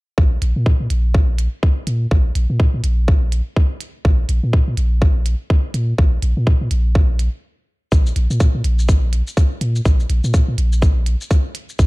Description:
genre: minimal techno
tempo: 124 BPM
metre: 4/4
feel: swing 60% on 16ths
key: unclear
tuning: A4 = 440 Hz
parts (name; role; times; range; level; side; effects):
- punchy sub bass; bass; 0.2-11.9 s; Bb1 to Bb2; -17 LUFS; equal; sidechain pumping
- electronic kick drum; drums; 0.2-11.9 s; none; -14 LUFS; equal; none
- electronic hi-hat and shaker; drums; 0.4-11.9 s; none; -33 LUFS; right 3 dB; none
room: little or no reverb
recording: dark, warm production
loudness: -15 LUFS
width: side -23 dB against mid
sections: 0.2-7.9 A section; 7.9-11.9 B section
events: stop 7.4-7.9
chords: none

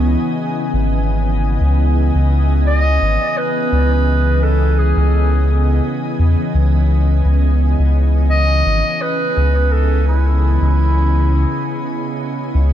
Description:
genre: ambient dub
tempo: 85 BPM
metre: 4/4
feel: swing 53% on 16ths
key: C# minor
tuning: A4 = 441 Hz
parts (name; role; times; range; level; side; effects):
- soft additive organ-like pad; sustained chords; 0.0-12.7 s; C#3 to G#5; -20 LUFS; equal; ensemble chorus, built-in reverb
- soft dub sub bass; bass; 0.0-12.7 s; G#1 to E2; -14 LUFS; equal; none
- warm clarinet; melody; 2.7-12.5 s; E4 to D#5; -21 LUFS; right 1 dB; dub echo
room: studio reverb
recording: echo-heavy mix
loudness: -13 LUFS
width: side -11 dB against mid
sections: 0.0-1.6 A section; 1.6-12.7 B section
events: none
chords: 0.0 C#m9

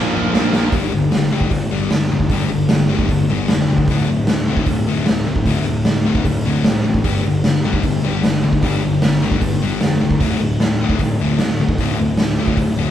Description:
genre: punk rock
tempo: 152 BPM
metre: 4/4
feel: straight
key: unclear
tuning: A4 = 440 Hz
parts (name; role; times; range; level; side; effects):
- biting overdriven guitar; riff; 0.0-0.7 s; Bb2 to Bb3; -24 LUFS; right 9 dB; none
- sludgy distorted guitar; riff; 0.0-12.9 s; D2 to Bb3; -18 LUFS; left 3 dB; overdrive
- thick fuzz guitar; riff; 0.0-0.7 s; Bb2 to Bb3; -27 LUFS; right 4 dB; none
- fuzz picked electric bass; bass; 0.0-12.9 s; D1 to C2; -23 LUFS; right 1 dB; overdrive
- raw garage drum kit; drums; 0.3-12.7 s; hi-hat, kick drum, snare drum; -18 LUFS; right 1 dB; none
room: moderate large studio reverb, RT60 1.4 s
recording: band playing live in one room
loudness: -14 LUFS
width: side -11 dB against mid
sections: 0.7-12.9 A section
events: drum fill 0.0-0.7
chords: 0.0 Bb5; 0.7 G5; 3.9 D5; 7.0 G5; 10.2 D5

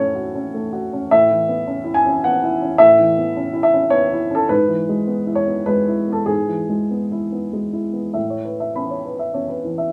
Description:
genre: neoclassical minimalist piano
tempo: 96-108 BPM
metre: 3/4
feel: rubato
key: A major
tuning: A4 = 441 Hz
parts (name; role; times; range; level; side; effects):
- warm upright piano; solo; 0.0-9.9 s; G#2 to B5; -18 LUFS; equal; none
room: moderate studio reverb, RT60 0.6 s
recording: none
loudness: -18 LUFS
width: mono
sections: 0.0-8.2 A section; 8.2-9.9 B section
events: none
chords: 0.0 F#m/A; 1.1 Aadd9; 4.5 E/G#; 8.2 Aadd9

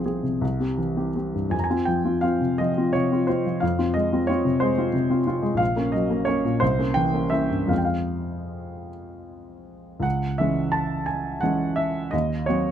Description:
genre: classical, romantic character piece for solo piano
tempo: 49-61 BPM (dotted quarters)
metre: 6/8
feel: rubato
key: F minor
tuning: A4 = 440 Hz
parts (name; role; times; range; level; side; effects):
- warm baby grand piano; solo; 0.0-12.7 s; Bb1 to Bb5; -22 LUFS; equal; none
room: light reverb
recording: close, detailed microphones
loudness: -21 LUFS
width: side -9 dB against mid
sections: 0.0-10.0 A section; 10.0-12.7 B section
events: none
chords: 0.4 C; 1.5 F5; 3.6 Fm; 5.6 Gb/Bb; 6.6 C7b9; 7.7 Fm; 10.0 C#m; 12.1 Cdim/Eb

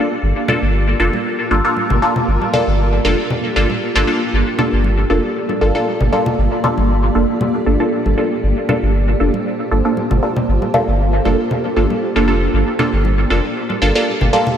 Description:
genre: dub techno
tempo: 117 BPM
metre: 4/4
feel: swing 54% on 16ths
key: G minor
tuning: A4 = 441 Hz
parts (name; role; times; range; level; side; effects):
- granular cloud pad; sustained chords; 0.0-14.6 s; Bb3 to D5; -21 LUFS; equal; built-in reverb, vintage 12-bit sampler grit
- filtered dub chord stab; stabs; 0.0-14.4 s; Bb3 to A4; -17 LUFS; equal; chorus, phaser, dub echo
- soft dub sub bass; bass; 0.2-14.3 s; F1 to G1; -17 LUFS; equal; tube saturation
- congas; percussion; 0.5-14.6 s; none; -25 LUFS; equal; dub echo
room: moderate lush hall reverb, RT60 2.3 s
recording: dreamy mix soaked in reverb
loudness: -14 LUFS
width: side -9 dB against mid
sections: 0.0-14.6 A section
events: none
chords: 0.0 Gm7

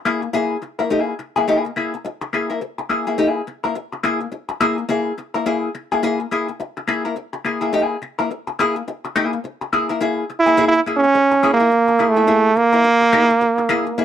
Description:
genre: funk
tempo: 106 BPM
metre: 4/4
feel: swing 60% on 16ths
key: F# mixolydian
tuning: A4 = 440 Hz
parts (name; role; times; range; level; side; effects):
- vintage hollow-body jazz guitar; accompaniment; 0.1-14.0 s; A#3 to A#4; -19 LUFS; left 3 dB; wah
- brilliant trombone; melody; 10.4-14.0 s; A3 to E4; -13 LUFS; right 3 dB; none
room: moderate studio reverb, RT60 0.7 s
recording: none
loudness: -16 LUFS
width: side -10 dB against mid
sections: 0.0-10.0 A section; 10.0-14.0 A section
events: none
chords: 0.0 F#9 (rootless)

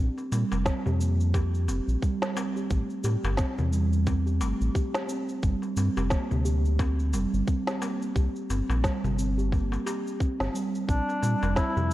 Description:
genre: organic downtempo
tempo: 88 BPM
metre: 4/4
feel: swing 58% on 16ths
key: C mixolydian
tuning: A4 = 441 Hz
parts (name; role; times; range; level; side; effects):
- steel tongue drum; arpeggios; 0.0-11.9 s; G3 to G4; -30 LUFS; right 2 dB; ping-pong delay
- round analog bass; bass; 0.0-11.9 s; F1 to Bb2; -26 LUFS; equal; tube saturation, sidechain pumping
- electronic cabasa and snare drum; drums; 0.2-11.9 s; none; -35 LUFS; equal; none
- darbuka; percussion; 0.2-11.9 s; none; -37 LUFS; left 3 dB; none
- electronic kick drum; drums; 0.7-11.7 s; none; -27 LUFS; equal; none
- warm duduk; melody; 10.9-11.9 s; D4 to E4; -28 LUFS; left 2 dB; none
room: light reverb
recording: worn, warbling old tape, cassette tape, warbly pitch drift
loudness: -24 LUFS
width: side -15 dB against mid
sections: 0.0-11.9 A section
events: none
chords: 0.0 Bbsus2; 2.7 Am7/G; 5.4 Gm7; 8.2 C5; 10.9 Bbadd9

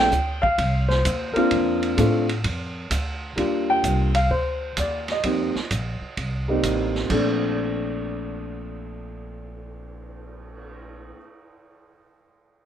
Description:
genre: jazz piano trio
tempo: 129 BPM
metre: 4/4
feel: swing 68% on 8ths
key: Bb major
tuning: A4 = 435 Hz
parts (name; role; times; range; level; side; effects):
- warm upright piano; melody; 0.0-11.2 s; Bb2 to G5; -22 LUFS; equal; none
- upright bass; bass; 0.0-11.1 s; A1 to A2; -27 LUFS; right 1 dB; none
- vintage drum kit; drums; 0.1-10.7 s; crash cymbal, cymbal swell, hi-hat, kick drum, ride cymbal, snare drum; -31 LUFS; right 3 dB; none
room: light reverb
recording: minimal, uncompressed stereo recording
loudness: -21 LUFS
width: side -9 dB against mid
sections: 0.0-3.4 A section; 3.4-7.1 B section; 7.1-10.8 C section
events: none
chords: 0.0 Bbmaj9; 3.4 Ebmaj7; 5.2 F7sus4; 7.1 Bbmaj9

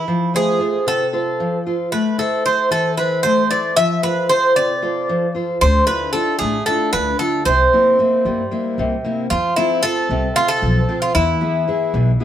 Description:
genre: greek folk, Greek bouzouki band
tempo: 228 BPM (eighths)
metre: 7/8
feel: straight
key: unclear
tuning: A4 = 436 Hz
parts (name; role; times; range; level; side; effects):
- Greek bouzouki; melody; 0.0-12.2 s; E4 to E5; -17 LUFS; right 1 dB; none
- picked steel-string acoustic guitar; accompaniment; 0.0-12.2 s; B2 to C5; -20 LUFS; left 1 dB; none
- upright bass; bass; 5.6-12.1 s; A1 to G2; -20 LUFS; equal; none
room: moderate studio reverb, RT60 0.8 s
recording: band playing live in one room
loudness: -15 LUFS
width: side -10 dB against mid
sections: 0.0-12.2 A section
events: none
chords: 0.1 F; 1.9 Am; 3.8 F; 5.6 Dmadd9; 7.5 C7; 9.3 F; 11.2 E

